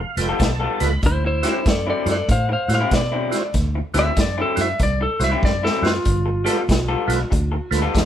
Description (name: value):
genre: electric blues shuffle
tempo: 96 BPM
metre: 4/4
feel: swing 64% on 8ths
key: unclear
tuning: A4 = 444 Hz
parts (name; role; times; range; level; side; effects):
- overdriven tonewheel organ; accompaniment; 0.0-7.8 s; E4 to B5; -25 LUFS; right 5 dB; chorus vibrato, slow rotary speaker
- vintage muted fingered electric bass; bass; 0.0-8.1 s; F1 to B2; -23 LUFS; equal; none
- vintage drum kit; drums; 0.2-8.1 s; hi-hat, kick drum, snare drum; -22 LUFS; equal; none
- electric guitar through a small old amp; riff; 0.3-8.0 s; D3 to A4; -26 LUFS; left 4 dB; none
- clean lap steel guitar; melody; 1.1-7.7 s; E4 to F5; -23 LUFS; left 1 dB; none
room: light reverb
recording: band playing live in one room, lossy compression artefacts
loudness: -17 LUFS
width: side -10 dB against mid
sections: 0.0-8.1 A section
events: tonewheel organ fill 0.0-1.0; electric slide guitar solo 0.0-8.1; drum fill 5.4-6.1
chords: 0.0 G9; 1.0 D9; 6.1 G9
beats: 0.41 | 1.03 1.66 2.29 2.92 | 3.55 4.18 4.80 5.43 | 6.06 6.68 7.31 7.94